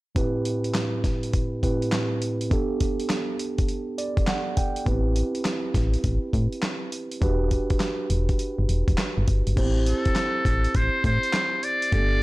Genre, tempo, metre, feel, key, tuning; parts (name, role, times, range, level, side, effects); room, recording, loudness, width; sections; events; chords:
R&B, new jack swing; 102 BPM; 4/4; swing 65% on 16ths; A dorian; A4 = 441 Hz
mellow tine electric piano; accompaniment; 0.1-12.2 s; A2 to G5; -27 LUFS; right 2 dB
dusty soul sampler-style drum kit; drums; 0.2-12.1 s; crash cymbal, handclaps, hi-hat, kick drum, snare drum; -26 LUFS; equal; gated reverb
solid FM bass; bass; 4.9-12.2 s; E1 to A2; -23 LUFS; equal
trumpet with metal mute; melody; 9.9-12.2 s; A4 to D5; -24 LUFS; left 1 dB
little or no reverb; -22 LUFS; side -19 dB against mid
0.2-9.6 A section; 9.6-12.2 B section
tine electric piano fill 3.7-4.9
0.2 Am7; 2.5 Gadd9; 4.9 Am7; 7.2 Em7; 9.6 Am7